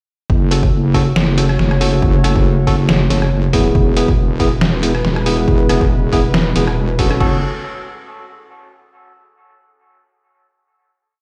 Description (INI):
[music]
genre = deep dubstep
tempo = 139 BPM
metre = 4/4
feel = swing 54% on 16ths, half-time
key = F# minor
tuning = A4 = 437 Hz
[part]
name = dark analog pad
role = sustained chords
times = 1.0-7.4 s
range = G#3 to C#5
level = -27 LUFS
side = equal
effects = chorus
[part]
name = wobble bass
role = bass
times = 0.3-7.4 s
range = E1 to F#1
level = -18 LUFS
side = equal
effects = chorus
[part]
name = electronic kick drum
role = drums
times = 0.3-7.3 s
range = none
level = -19 LUFS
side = equal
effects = studio reverb
[part]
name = tine electric piano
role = stabs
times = 0.5-7.4 s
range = B3 to A4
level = -22 LUFS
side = equal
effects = dub echo
[part]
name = trip hop sampler-style drum kit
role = drums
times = 0.5-7.3 s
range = crash cymbal, hi-hat, rim click, snare drum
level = -22 LUFS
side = equal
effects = studio reverb
[sound]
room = light reverb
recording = played on a big sound system in a bare room, stone room reverb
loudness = -15 LUFS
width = mono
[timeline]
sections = 0.3-7.2 drop; 7.2-8.9 final chord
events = drop 0.3-7.2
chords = 0.3 F#m; 3.8 E; 7.2 F#m